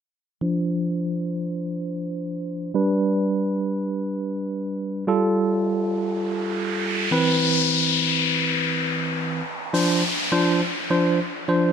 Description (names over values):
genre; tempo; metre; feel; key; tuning
pop; 103 BPM; 4/4; straight; D dorian; A4 = 436 Hz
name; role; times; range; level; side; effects
bell-like tine electric piano; accompaniment; 0.4-11.7 s; E3 to C5; -22 LUFS; right 1 dB; medium stereo tremolo, low-pass filter
noise sweep and downlifter; sound effects; 5.7-11.7 s; none; -24 LUFS; left 3 dB; none
room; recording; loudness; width
moderate lush hall reverb, RT60 2.2 s; none; -21 LUFS; side -7 dB against mid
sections
0.4-9.7 A section; 9.7-11.7 B section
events
filter sweep on tine electric piano 0.4-9.7; noise sweep 5.7-9.7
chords
0.4 Dm7; 2.7 G; 5.1 Fadd9; 7.1 Cmaj7; 9.7 Dm7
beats
| 0.42 1.00 1.58 2.17 | 2.75 3.33 3.91 4.50 | 5.08 5.66 6.24 6.83 | 7.41 7.99 8.57 9.16 | 9.74 10.32 10.90 11.49